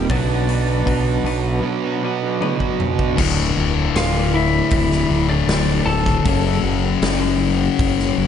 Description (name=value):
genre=quiet-loud alternative rock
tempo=78 BPM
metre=4/4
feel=straight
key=unclear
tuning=A4 = 439 Hz
part: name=lightly driven lead guitar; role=melody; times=0.0-6.6 s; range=D4 to A5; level=-24 LUFS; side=equal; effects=slapback echo, digital delay
part: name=semi-hollow electric guitar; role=arpeggios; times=0.0-3.2 s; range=B2 to B4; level=-26 LUFS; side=left 6 dB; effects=tremolo
part: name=fuzz guitar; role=riff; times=0.0-3.2 s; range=B2 to B3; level=-22 LUFS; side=right 9 dB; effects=distortion
part: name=growling fingered electric bass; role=bass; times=0.0-8.3 s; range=D1 to B1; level=-21 LUFS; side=equal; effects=overdrive
part: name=big rock drum kit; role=drums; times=0.1-8.1 s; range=crash cymbal, hi-hat, kick drum, snare drum, toms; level=-23 LUFS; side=equal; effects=none
part: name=thick fuzz guitar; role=riff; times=3.2-8.3 s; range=D2 to F#3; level=-19 LUFS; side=left 9 dB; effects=distortion
room=light reverb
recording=nothing above 10.4 kHz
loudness=-16 LUFS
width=side -8 dB against mid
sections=0.0-3.2 A section; 3.2-8.3 B section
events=half time 0.0-3.2; drum fill 2.4-3.2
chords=0.1 Bm; 3.2 Dm; 6.3 F#m